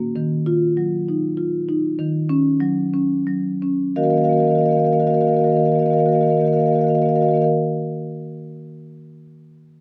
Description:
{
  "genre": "classical, contemporary piece for solo marimba",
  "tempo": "84-100 BPM",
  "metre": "3/4",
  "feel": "straight",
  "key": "Eb minor",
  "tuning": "A4 = 439 Hz",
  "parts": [
    { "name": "marimba with soft mallets", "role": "solo", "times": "0.0-7.5 s", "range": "Eb3 to F5", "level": "-19 LUFS", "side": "equal", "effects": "none" }
  ],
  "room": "light reverb",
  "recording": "none",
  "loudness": "-19 LUFS",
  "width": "mono",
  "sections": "0.2-4.0 A section; 4.0-8.2 B section",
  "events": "slowing down 0.0-4.0",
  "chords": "0.2 Ebmadd9; 2.0 Dbsus24/Eb; 4.0 Ebmadd9",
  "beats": "| 0.16 0.76 1.37 | 1.98 2.61 3.27 | 3.97 4.67 5.37 | 6.06 6.76 7.46"
}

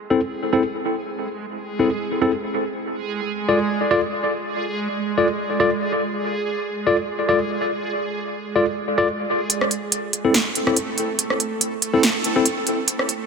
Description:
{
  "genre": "deep dubstep",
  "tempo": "142 BPM",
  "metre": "4/4",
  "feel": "swing 55% on 16ths, half-time",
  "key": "A harmonic minor",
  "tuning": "A4 = 440 Hz",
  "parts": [
    { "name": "backwards swelling texture", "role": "texture", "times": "0.0-13.3 s", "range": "G#3 to A4", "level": "-27 LUFS", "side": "right 4 dB", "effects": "built-in reverb" },
    { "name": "mellow tine electric piano", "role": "stabs", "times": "0.1-12.5 s", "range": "C4 to D5", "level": "-21 LUFS", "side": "left 2 dB", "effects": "medium stereo tremolo, dub echo" },
    { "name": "deep house drum kit", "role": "drums", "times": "9.5-13.2 s", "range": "hi-hat, rim click, snare drum", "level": "-20 LUFS", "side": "right 2 dB", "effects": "none" }
  ],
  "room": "moderate huge ambient reverb, RT60 3.9 s",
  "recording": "high-pass filter",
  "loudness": "-19 LUFS",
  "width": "side -5 dB against mid",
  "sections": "0.0-9.5 A section; 9.5-13.3 B section",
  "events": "build-up 9.5-13.3",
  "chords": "0.0 Am; 2.7 N.C.",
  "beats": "0.20 0.62 | 1.05 1.47 1.89 2.31 | 2.74 3.16 3.58 4.00 | 4.43 4.85 5.27 5.70 | 6.12 6.54 6.96 7.38 | 7.81 8.23 8.65 9.08 | 9.50 9.92 10.34 10.77 | 11.19 11.61 12.03 12.46 | 12.88"
}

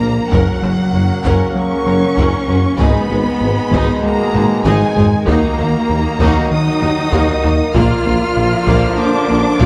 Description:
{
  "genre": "cinematic, hybrid orchestral and electronic film score",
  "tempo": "97 BPM",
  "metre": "4/4",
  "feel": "straight",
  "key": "Eb minor",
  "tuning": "A4 = 440 Hz",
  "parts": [
    { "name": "dark symphonic violin section", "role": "melody", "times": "0.0-9.7 s", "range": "Gb5 to F6", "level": "-27 LUFS", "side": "equal", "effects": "none" },
    { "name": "rich chamber violin section", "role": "second line", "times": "0.0-9.7 s", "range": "Eb4 to Gb5", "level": "-29 LUFS", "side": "equal", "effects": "none" },
    { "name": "rich symphonic viola section", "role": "accompaniment", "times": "0.0-9.7 s", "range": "Ab3 to Bb4", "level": "-25 LUFS", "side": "equal", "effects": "none" },
    { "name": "chorused pulse-width pad", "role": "sustained chords", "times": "0.0-9.7 s", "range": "Db3 to Eb5", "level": "-28 LUFS", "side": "equal", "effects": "none" },
    { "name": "mellow French horn section", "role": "sustained chords", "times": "0.0-9.7 s", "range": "Cb3 to Bb4", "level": "-27 LUFS", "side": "equal", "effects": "none" },
    { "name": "warm trombone section", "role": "sustained chords", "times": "0.0-9.7 s", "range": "Db3 to Bb3", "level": "-27 LUFS", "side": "equal", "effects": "none" },
    { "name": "round analog bass", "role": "riff", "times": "0.0-9.7 s", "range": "Eb2 to Bb3", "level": "-21 LUFS", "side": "equal", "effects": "none" },
    { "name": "mellow tuba", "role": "bass", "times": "0.0-9.7 s", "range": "Gb1 to Eb2", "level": "-25 LUFS", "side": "equal", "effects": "none" },
    { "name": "rich symphonic double bass section", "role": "bass", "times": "0.0-9.7 s", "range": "Gb1 to Eb2", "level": "-24 LUFS", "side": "equal", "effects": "none" },
    { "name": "warm symphonic cello section", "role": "bass", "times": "0.0-9.7 s", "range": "Gb3 to F4", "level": "-21 LUFS", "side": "equal", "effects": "none" },
    { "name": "taiko ensemble", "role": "drums", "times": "0.3-9.7 s", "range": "none", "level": "-24 LUFS", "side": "equal", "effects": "none" }
  ],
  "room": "moderate scoring stage reverb, RT60 1.7 s",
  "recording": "dark, warm production",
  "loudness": "-14 LUFS",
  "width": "mono",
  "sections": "0.0-9.7 A section",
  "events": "drum fill 4.3-5.3",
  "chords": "0.3 Gb; 2.8 Abm; 5.3 Ebm; 7.7 Bb",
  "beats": "| 0.32 0.94 1.56 2.18 | 2.80 3.42 4.03 4.65 | 5.27 5.89 6.51 7.13 | 7.75 8.36 8.98 9.60"
}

